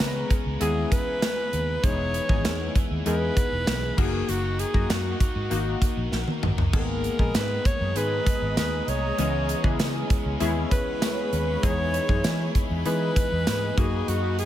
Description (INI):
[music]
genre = 1980s-style pop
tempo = 98 BPM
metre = 4/4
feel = straight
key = unclear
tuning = A4 = 440 Hz
[part]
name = breathy alto saxophone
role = melody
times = 0.0-14.5 s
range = F#4 to C#5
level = -30 LUFS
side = equal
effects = none
[part]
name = chorused retro synth keys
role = accompaniment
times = 0.0-14.5 s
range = D#3 to A#5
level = -30 LUFS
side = left 3 dB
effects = none
[part]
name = high-gain distorted guitar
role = accompaniment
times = 0.0-14.5 s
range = G#2 to E4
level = -38 LUFS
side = right 1 dB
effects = distortion, ensemble chorus
[part]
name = vintage muted fingered electric bass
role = bass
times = 0.0-14.4 s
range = E1 to E3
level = -28 LUFS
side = equal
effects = none
[part]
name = modern studio drum kit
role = drums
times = 0.0-14.5 s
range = crash cymbal, hi-hat, kick drum, snare drum, splash cymbal, tambourine, toms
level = -25 LUFS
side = equal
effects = gated reverb
[part]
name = granular cloud pad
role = sustained chords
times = 7.8-14.5 s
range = G#4 to D#6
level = -34 LUFS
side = right 1 dB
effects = built-in reverb
[sound]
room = small room ambience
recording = none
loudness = -22 LUFS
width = side -12 dB against mid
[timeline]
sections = 0.0-14.5 A section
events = drum fill 6.1-6.7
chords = 0.0 C#m7; 1.8 Emaj7; 4.0 D#m/F#; 6.7 G#madd9; 9.2 C#m7; 11.6 Emaj7; 13.8 D#m/F#